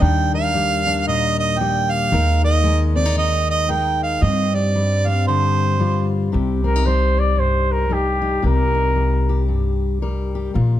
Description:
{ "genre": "acoustic folk duo or small band", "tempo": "114 BPM", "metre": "4/4", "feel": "swing 61% on 8ths", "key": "C minor", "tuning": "A4 = 440 Hz", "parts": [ { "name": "warm harmonica", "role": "second line", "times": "0.0-6.1 s", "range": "C5 to G5", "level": "-20 LUFS", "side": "right 5 dB", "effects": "none" }, { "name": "fingerpicked steel-string acoustic guitar", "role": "accompaniment", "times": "0.0-10.8 s", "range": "G2 to Bb4", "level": "-22 LUFS", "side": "left 5 dB", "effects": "none" }, { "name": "upright bass", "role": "bass", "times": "0.0-10.8 s", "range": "Bb1 to G2", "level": "-19 LUFS", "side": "equal", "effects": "none" }, { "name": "warm flugelhorn", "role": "melody", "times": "6.7-9.5 s", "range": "G4 to D5", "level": "-21 LUFS", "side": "equal", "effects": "none" } ], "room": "light reverb", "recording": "close, detailed microphones", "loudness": "-16 LUFS", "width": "side -12 dB against mid", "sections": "0.0-6.3 A section; 6.3-10.8 B section", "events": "harmonica solo 0.0-6.3", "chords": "0.0 Ebmaj7; 2.1 Absus2/Eb; 4.2 G7sus4; 6.3 Cm7" }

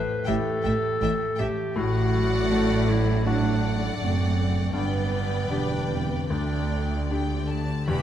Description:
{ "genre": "cinematic, emotional film score for orchestra", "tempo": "75-82 BPM", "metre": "4/4", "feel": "rubato", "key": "unclear", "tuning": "A4 = 440 Hz", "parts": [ { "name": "warm clarinet", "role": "second line", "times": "0.0-7.1 s", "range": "B3 to B4", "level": "-29 LUFS", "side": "equal", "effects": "none" }, { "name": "bright concert grand piano", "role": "accompaniment", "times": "0.0-8.0 s", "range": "D2 to G4", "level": "-31 LUFS", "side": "left 2 dB", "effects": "none" }, { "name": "concert harp", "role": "arpeggios", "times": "0.0-8.0 s", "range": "G2 to B4", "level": "-33 LUFS", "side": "left 7 dB", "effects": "none" }, { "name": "clear studio violin section", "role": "melody", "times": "0.2-8.0 s", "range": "F#5 to B5", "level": "-37 LUFS", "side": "left 4 dB", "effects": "none" }, { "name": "rich studio violin section", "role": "second line", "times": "0.3-8.0 s", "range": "G3 to E5", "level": "-36 LUFS", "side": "left 1 dB", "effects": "none" }, { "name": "warm studio viola section", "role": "accompaniment", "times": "0.3-8.0 s", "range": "G3 to B4", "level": "-33 LUFS", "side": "equal", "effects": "none" }, { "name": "rich studio double bass section", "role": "bass", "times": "0.3-8.0 s", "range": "E1 to D2", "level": "-28 LUFS", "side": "right 3 dB", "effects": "none" }, { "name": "rich symphonic cello section", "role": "bass", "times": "0.3-8.0 s", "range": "D2 to G4", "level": "-29 LUFS", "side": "right 2 dB", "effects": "none" } ], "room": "moderate scoring stage reverb, RT60 2.1 s", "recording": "none", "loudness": "-22 LUFS", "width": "side -10 dB against mid", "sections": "0.0-7.9 A section", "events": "none", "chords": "0.0 A7(no3); 1.8 D/A; 4.7 G; 6.3 Dsus4" }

